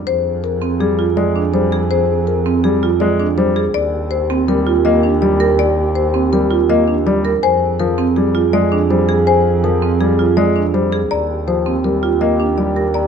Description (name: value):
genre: classical, minimalist pattern music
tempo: 163 BPM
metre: 5/4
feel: straight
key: unclear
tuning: A4 = 440 Hz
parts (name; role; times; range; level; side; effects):
- marimba with medium mallets; melody; 0.1-13.1 s; Ab4 to Eb5; -20 LUFS; left 12 dB; none
- mellow French horn; second line; 0.1-13.1 s; G4 to Ab4; -22 LUFS; right 2 dB; none
- rich double bass; bass; 0.1-13.1 s; Eb2 to F2; -20 LUFS; right 2 dB; none
- marimba with medium hard mallets; arpeggios; 0.6-13.0 s; C4 to Bb4; -19 LUFS; right 7 dB; none
- warm grand piano; accompaniment; 0.8-12.8 s; F3 to Bb3; -20 LUFS; left 1 dB; none
- small celesta; arpeggios; 7.4-13.1 s; Ab5 to Bb5; -21 LUFS; left 5 dB; none
room: light reverb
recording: close, detailed microphones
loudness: -13 LUFS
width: side -7 dB against mid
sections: 0.0-13.1 A section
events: none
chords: 0.1 Fmadd9; 3.7 Eb69; 7.4 Fmadd9; 11.1 Eb69